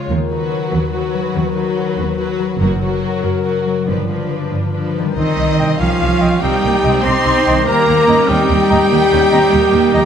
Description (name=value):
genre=cinematic, heroic adventure film score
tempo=96 BPM (dotted quarters)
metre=12/8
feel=straight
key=unclear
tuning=A4 = 441 Hz
part: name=dark symphonic violin section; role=melody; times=0.0-10.1 s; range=A#4 to C6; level=-24 LUFS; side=left 4 dB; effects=none
part: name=warm studio violin section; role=second line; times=0.0-10.1 s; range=D4 to C6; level=-24 LUFS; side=left 2 dB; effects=none
part: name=warm studio viola section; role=accompaniment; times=0.0-10.1 s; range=F3 to Eb4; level=-23 LUFS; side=right 2 dB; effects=none
part: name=concert harp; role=arpeggios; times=0.0-10.1 s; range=F#2 to C#5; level=-22 LUFS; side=left 7 dB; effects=none
part: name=rich symphonic cello section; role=bass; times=0.1-10.1 s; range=D#2 to C4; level=-20 LUFS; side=right 3 dB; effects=none
part: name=warm symphonic double bass section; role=bass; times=0.1-10.0 s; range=F#1 to D#2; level=-20 LUFS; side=right 4 dB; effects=none
part: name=warm cor anglais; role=second line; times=5.2-10.1 s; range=C4 to G4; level=-22 LUFS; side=right 1 dB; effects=none
part: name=dark French horn section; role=sustained chords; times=5.2-10.1 s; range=Eb4 to C5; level=-16 LUFS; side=left 2 dB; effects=none
part: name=warm trumpet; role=stabs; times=5.2-10.1 s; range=Eb4 to C5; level=-22 LUFS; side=right 2 dB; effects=none
part: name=silver concert flute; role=second line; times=5.6-10.0 s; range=G5 to Bb5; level=-26 LUFS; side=left 2 dB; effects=none
part: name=warm clarinet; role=second line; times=5.6-10.0 s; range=Eb5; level=-25 LUFS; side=left 1 dB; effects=none
room=wet scoring stage reverb, RT60 1.5 s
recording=none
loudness=-13 LUFS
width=side -8 dB against mid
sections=0.0-5.2 A section; 5.2-10.1 B section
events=none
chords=0.1 B/D#; 2.6 F#; 3.9 G7; 5.2 Cm; 7.7 Eb